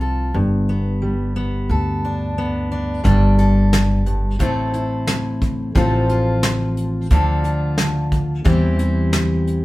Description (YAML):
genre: acoustic folk duo or small band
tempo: 89 BPM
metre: 4/4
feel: straight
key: G mixolydian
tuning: A4 = 440 Hz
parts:
  - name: fingerpicked steel-string acoustic guitar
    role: accompaniment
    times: 0.0-9.6 s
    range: G2 to A4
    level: -19 LUFS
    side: left 1 dB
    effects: none
  - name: upright bass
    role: bass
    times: 0.0-9.6 s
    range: G1 to E2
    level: -20 LUFS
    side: equal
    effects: none
  - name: soft brush drum kit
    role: drums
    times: 3.0-9.6 s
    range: hi-hat, kick drum, snare drum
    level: -21 LUFS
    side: equal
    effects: none
room: moderate studio reverb, RT60 0.7 s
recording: band playing live in one room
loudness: -16 LUFS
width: side -18 dB against mid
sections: 0.0-3.1 A section; 3.1-9.6 B section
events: none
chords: 0.3 Gadd9; 3.1 Gsus2; 4.4 Am; 5.8 F/A; 7.1 Dm; 8.5 C/E